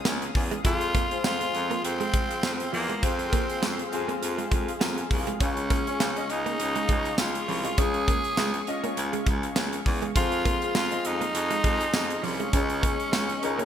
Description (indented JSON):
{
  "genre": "1980s-style pop",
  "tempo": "101 BPM",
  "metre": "4/4",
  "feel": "swing 55% on 16ths",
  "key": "Db major",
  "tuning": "A4 = 441 Hz",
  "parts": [
    { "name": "clear baby grand piano", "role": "accompaniment", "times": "0.0-13.7 s", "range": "Db3 to Bb5", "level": "-35 LUFS", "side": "left 5 dB", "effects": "lush chorus" },
    { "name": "overdriven electric guitar", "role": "accompaniment", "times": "0.0-13.7 s", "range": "Db3 to F4", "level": "-40 LUFS", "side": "left 6 dB", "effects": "none" },
    { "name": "warm analog pad", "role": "sustained chords", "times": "0.0-13.7 s", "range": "Ab4 to Eb6", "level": "-36 LUFS", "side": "left 1 dB", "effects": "chorus" },
    { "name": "direct-recorded clean electric guitar", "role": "riff", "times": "0.1-13.7 s", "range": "F3 to Db4", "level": "-35 LUFS", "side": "right 6 dB", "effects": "ensemble chorus" },
    { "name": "clear baritone saxophone", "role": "bass", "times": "0.1-13.6 s", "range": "C2 to F2", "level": "-32 LUFS", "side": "equal", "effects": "none" },
    { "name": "modern studio drum kit", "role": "drums", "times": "0.1-13.7 s", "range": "hi-hat, kick drum, snare drum, tambourine", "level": "-28 LUFS", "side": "equal", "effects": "gated reverb" },
    { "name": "raspy tenor saxophone", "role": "melody", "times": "0.7-13.7 s", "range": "Bb3 to Ab4", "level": "-29 LUFS", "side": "equal", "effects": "digital delay" }
  ],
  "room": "light reverb",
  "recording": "bright 1980s-style digital production",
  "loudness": "-24 LUFS",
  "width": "side -9 dB against mid",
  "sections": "0.0-13.7 A section",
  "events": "none",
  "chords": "0.0 Db; 0.7 Fm; 5.4 Db; 10.2 Fm; 12.5 Dbsus2"
}